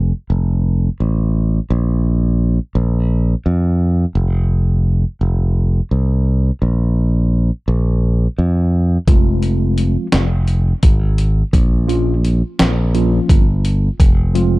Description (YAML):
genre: progressive instrumental, band music in an uneven meter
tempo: 171 BPM (eighths)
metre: 7/8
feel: straight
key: F minor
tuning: A4 = 441 Hz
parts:
  - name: modern bright fingered electric bass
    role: bass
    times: 0.0-14.6 s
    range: F1 to F2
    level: -14 LUFS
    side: equal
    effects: none
  - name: mellow tine electric piano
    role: accompaniment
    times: 9.1-14.6 s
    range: F3 to F4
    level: -20 LUFS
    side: right 1 dB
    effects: medium stereo tremolo
  - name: dusty soul sampler-style drum kit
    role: drums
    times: 9.1-14.5 s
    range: hi-hat, kick drum, snare drum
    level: -14 LUFS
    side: equal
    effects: none
room: little or no reverb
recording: dark, warm production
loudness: -13 LUFS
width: side -20 dB against mid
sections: 0.0-14.6 A section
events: none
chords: 0.0 F; 1.7 Bb5; 4.2 F5; 6.6 Bb5; 9.1 Fm; 11.5 Bbm; 14.0 Fm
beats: 0.28 0.63 0.99 1.34 | 1.69 2.04 2.39 2.75 3.10 3.45 3.80 | 4.15 4.51 4.86 5.21 5.56 5.91 6.26 | 6.62 6.97 7.32 7.67 8.02 8.37 8.72 | 9.08 9.43 9.78 10.13 10.48 10.83 11.19 | 11.54 11.89 12.24 12.59 12.94 13.29 13.64 | 13.99 14.34